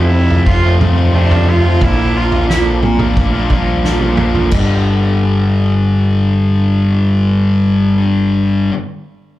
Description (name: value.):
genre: quiet-loud alternative rock.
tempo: 89 BPM.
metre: 4/4.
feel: straight.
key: unclear.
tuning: A4 = 440 Hz.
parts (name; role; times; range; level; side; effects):
rich cello; melody; 0.0-4.5 s; G3 to F4; -20 LUFS; right 3 dB; slapback echo.
electric guitar through a small old amp; arpeggios; 0.0-8.7 s; F2 to G4; -24 LUFS; right 5 dB; ensemble chorus, slapback echo.
thick fuzz guitar; riff; 0.0-8.7 s; F2 to F4; -15 LUFS; left 2 dB; distortion.
overdriven picked electric bass; bass; 0.0-8.7 s; G1 to F2; -14 LUFS; equal; none.
loose indie drum kit; drums; 0.3-4.7 s; crash cymbal, kick drum, snare drum, toms; -18 LUFS; right 1 dB; none.
room: little or no reverb.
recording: live gig heard through the venue's PA, club reverb.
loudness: -11 LUFS.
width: side -15 dB against mid.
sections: 0.0-4.5 A section; 4.5-7.2 B section.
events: cello solo 0.0-4.5; drum fill 3.8-4.5.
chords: 0.0 F; 1.8 Bb; 4.5 G.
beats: 0.46 1.14 | 1.81 2.49 3.17 3.84 | 4.52 5.20 5.87 6.55.